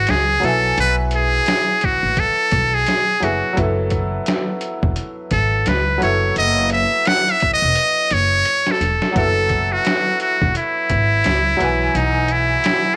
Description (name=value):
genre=hip hop, jazz-hop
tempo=86 BPM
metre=4/4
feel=swing 58% on 16ths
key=F# dorian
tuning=A4 = 441 Hz
part: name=trumpet with metal mute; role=melody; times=0.0-13.0 s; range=D#4 to F#5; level=-19 LUFS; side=equal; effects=none
part: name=bright upright piano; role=accompaniment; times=0.0-13.0 s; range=E3 to G#5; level=-27 LUFS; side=equal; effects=none
part: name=upright bass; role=bass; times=0.0-12.5 s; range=E1 to C#2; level=-24 LUFS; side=equal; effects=none
part: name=trip hop sampler-style drum kit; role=drums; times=0.1-12.8 s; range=hi-hat, kick drum, snare drum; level=-25 LUFS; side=equal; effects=overdrive
room=light reverb, studio reverb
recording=none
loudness=-18 LUFS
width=mono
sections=0.0-9.2 A section; 9.2-13.0 B section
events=muted trumpet solo 0.0-9.2; drum fill 7.8-9.2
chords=0.4 B7sus4; 3.6 F#m9; 6.0 F#m7; 9.2 F#m9; 11.6 Bsus4